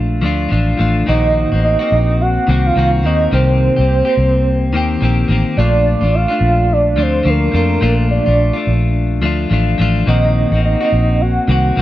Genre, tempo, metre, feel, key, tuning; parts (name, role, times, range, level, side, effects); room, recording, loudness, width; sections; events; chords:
indie pop, bedroom pop; 107 BPM; 4/4; swing 60% on 16ths; Bb major; A4 = 439 Hz
clean electric guitar; accompaniment; 0.0-11.8 s; Bb2 to G4; -18 LUFS; left 3 dB; lush chorus, warbly pitch drift
vintage muted fingered electric bass; bass; 0.0-11.8 s; A1 to F2; -15 LUFS; equal
soft octave-layered synth lead; melody; 1.1-11.8 s; Bb4 to Gb5; -17 LUFS; right 2 dB; tremolo, analog chorus, slapback echo
little or no reverb; dry, close 1970s-style studio recording; -12 LUFS; side -14 dB against mid
0.0-11.8 A section
0.0 Bbmaj7; 1.1 Ebm6; 3.3 Cm7; 5.6 Bbmaj7; 10.1 Ebm6